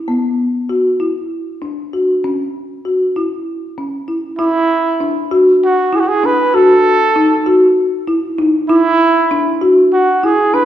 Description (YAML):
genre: progressive instrumental, progressive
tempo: 195 BPM (eighths)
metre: 7/8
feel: straight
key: unclear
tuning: A4 = 439 Hz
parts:
  - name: folk marimba with medium mallets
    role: arpeggios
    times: 0.1-10.7 s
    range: B3 to F#4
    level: -13 LUFS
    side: left 1 dB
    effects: none
  - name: breathy trumpet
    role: melody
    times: 4.4-10.7 s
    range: E4 to B4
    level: -14 LUFS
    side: right 3 dB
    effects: none
room: wet recital hall reverb, RT60 1.6 s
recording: recorded in a church or concert hall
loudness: -11 LUFS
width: side -11 dB against mid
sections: 0.0-4.4 A section; 4.4-10.7 B section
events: none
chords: 0.1 Bm; 2.2 F#5; 4.4 Dadd9; 6.5 D#dim; 8.7 Dadd9